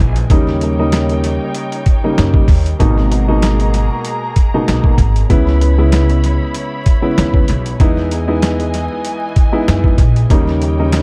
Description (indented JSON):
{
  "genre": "hip hop, boom-bap hip-hop",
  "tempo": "96 BPM",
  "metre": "4/4",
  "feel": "swing 55% on 16ths",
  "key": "G# harmonic minor",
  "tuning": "A4 = 440 Hz",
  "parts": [
    { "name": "warm studio string section", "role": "sustained chords", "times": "0.0-11.0 s", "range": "E3 to B5", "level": "-28 LUFS", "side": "equal", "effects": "high-pass filter, low-pass filter" },
    { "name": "upright bass", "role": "bass", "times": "0.0-11.0 s", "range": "G#1 to F#2", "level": "-17 LUFS", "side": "equal", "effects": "none" },
    { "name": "boom bap sampler-style drum kit", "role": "drums", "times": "0.2-11.0 s", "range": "hi-hat, kick drum, snare drum", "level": "-16 LUFS", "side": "equal", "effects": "none" },
    { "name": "dark baby grand piano", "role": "accompaniment", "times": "0.3-11.0 s", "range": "B2 to E4", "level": "-20 LUFS", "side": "equal", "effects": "cassette tape, high-pass filter, low-pass filter, dub echo" }
  ],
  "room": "small room ambience",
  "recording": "echo-heavy mix, vinyl crackle",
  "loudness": "-14 LUFS",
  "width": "mono",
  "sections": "0.0-11.0 A section",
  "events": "none",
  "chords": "0.3 D#7; 2.8 G#madd9; 5.3 C#m7; 7.8 Emaj7; 10.3 D#7"
}